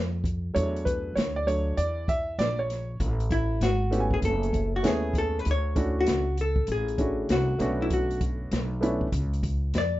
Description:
hip hop, jazz-hop; 98 BPM; 4/4; swing 66% on 16ths; A4 = 440 Hz
dark grand piano; accompaniment; 0.0-9.1 s; C#3 to G#5; -28 LUFS; right 1 dB
upright bass; bass; 0.0-10.0 s; F#1 to E#2; -28 LUFS; equal
open jazz drum kit; drums; 0.2-9.9 s; hi-hat, kick drum, snare drum; -30 LUFS; equal
vintage hollow-body jazz guitar; melody; 3.3-10.0 s; E4 to D5; -28 LUFS; left 2 dB
little or no reverb; rough home demo mix, nothing above 7.6 kHz; -24 LUFS; side -15 dB against mid
0.0-3.0 A section; 3.0-10.0 A section
grand piano solo 0.0-3.0; hollow-body jazz guitar solo 3.0-10.0
0.0 N.C.; 0.6 E7sus4; 3.0 Amaj7; 5.5 Dmaj7; 7.6 Bm9

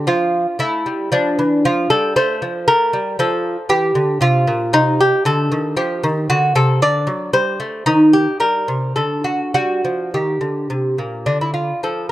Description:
classical, baroque-style dance for lute; 101-120 BPM; 3/4; rubato; G minor from 4.7 s; A4 = 439 Hz
lute; solo; 0.0-12.1 s; Bb2 to D5; -15 LUFS; equal
light reverb, small room reverb; dark, warm production; -15 LUFS; side -14 dB against mid
0.0-11.3 A section
0.0 Dm/F; 1.6 F; 4.7 Cm; 6.3 D7; 7.9 Eb; 9.0 N.C.; 9.6 Gm; 11.3 Dm

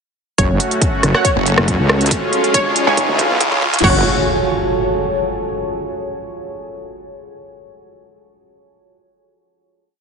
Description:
heavy wobble dubstep; 139 BPM; 4/4; half-time; F# harmonic minor; A4 = 440 Hz
wide unison pluck; melody; 0.4-4.0 s; C#5; -22 LUFS; equal; ping-pong delay
supersaw pad; sustained chords; 0.4-4.0 s; G#3 to F#4; -21 LUFS; equal; sidechain pumping
wobble bass; bass; 0.4-4.0 s; F#1 to D2; -16 LUFS; equal; chorus, overdrive
dubstep drum kit; drums; 0.4-3.9 s; crash cymbal, hi-hat, rim click; -19 LUFS; right 1 dB
electronic kick drum; drums; 0.4-3.9 s; -20 LUFS; equal
riser and impact; sound effects; 1.8-5.6 s; -24 LUFS; equal
deep dark ambient pad; texture; 1.8-5.5 s; E#4 to A5; -21 LUFS; equal; chorus, built-in reverb, sidechain pumping
orchestra-hit-like synth stab; stabs; 1.1-4.0 s; C#4 to F#5; -22 LUFS; right 4 dB; built-in reverb, ping-pong delay
snarling distorted saw bass; bass; 1.4-3.8 s; F#1 to C#2; -18 LUFS; equal; overdrive
moderate lush hall reverb, RT60 1.7 s, digital ambience; heavily compressed radio sound, high-pass filter, nothing above 10.4 kHz; -14 LUFS; side -5 dB against mid
0.4-3.8 build; 3.8-5.6 final chord
build-up 0.4-3.8; filter sweep 0.4-3.8; riser 1.8-3.8; drum fill 2.1-3.8
0.4 F#m; 2.1 C#; 3.8 F#m

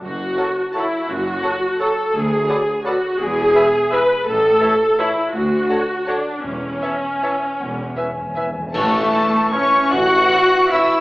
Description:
classical, orchestral ballroom waltz; 147-185 BPM; 3/4; rubato; A major; A4 = 441 Hz
clear studio viola section; accompaniment; 0.0-10.8 s; C#4 to B4; -20 LUFS; equal
dark French horn section; sustained chords; 0.0-11.0 s; A3 to B4; -23 LUFS; left 1 dB
clear studio cello section; bass; 0.0-11.0 s; D2 to F#4; -24 LUFS; equal
rich studio double bass section; bass; 0.0-10.2 s; E1 to D2; -32 LUFS; right 1 dB
warm studio violin section; melody; 0.4-11.0 s; G#5 to F#6; -25 LUFS; left 2 dB
dark cor anglais; second line; 0.4-11.0 s; A3 to F#5; -24 LUFS; right 1 dB
mellow hollow silver concert flute; second line; 0.4-11.0 s; F#5 to C#6; -24 LUFS; left 1 dB
rich studio violin section; second line; 0.4-11.0 s; A4 to F#5; -29 LUFS; left 1 dB
warm clarinet; second line; 0.4-11.0 s; A4 to F#5; -27 LUFS; left 1 dB
mellow bassoon; accompaniment; 0.4-11.0 s; D3 to F#3; -28 LUFS; equal
timpani; percussion; 6.4-8.7 s; E2; -36 LUFS; equal
warm tuba; bass; 8.7-10.2 s; A1; -27 LUFS; right 1 dB
clash cymbals and concert bass drum; percussion; 8.7-9.5 s; -32 LUFS; left 1 dB
wet recital hall reverb, RT60 1.2 s; AM radio sound; -16 LUFS; side -19 dB against mid
0.0-8.7 A section; 8.7-11.0 B section
timpani fill 7.6-8.7; band accent 8.7-9.1
0.0 F#m; 2.1 Bm7/D; 3.2 E; 4.3 A; 5.3 Dmaj7; 6.4 A/E (rootless); 8.7 A

